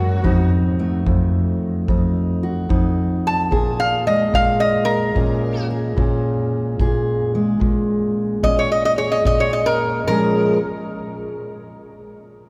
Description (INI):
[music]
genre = acoustic country blues, solo or duo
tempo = 73 BPM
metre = 4/4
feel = swing 66% on 8ths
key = Bb minor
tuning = A4 = 442 Hz
[part]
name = lap resonator guitar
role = melody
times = 0.0-10.6 s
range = Gb4 to A5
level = -22 LUFS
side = equal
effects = none
[part]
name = fingerpicked steel-string acoustic guitar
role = accompaniment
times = 0.0-10.6 s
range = F2 to Ab4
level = -22 LUFS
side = equal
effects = none
[part]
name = kick drum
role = drums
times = 0.2-9.5 s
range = none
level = -26 LUFS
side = equal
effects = none
[sound]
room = wet cathedral reverb, RT60 5.5 s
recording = recorded in a church or concert hall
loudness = -19 LUFS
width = mono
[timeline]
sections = 0.0-10.1 A section; 10.1-12.5 B section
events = none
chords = 0.2 F7b9; 3.5 Bbm7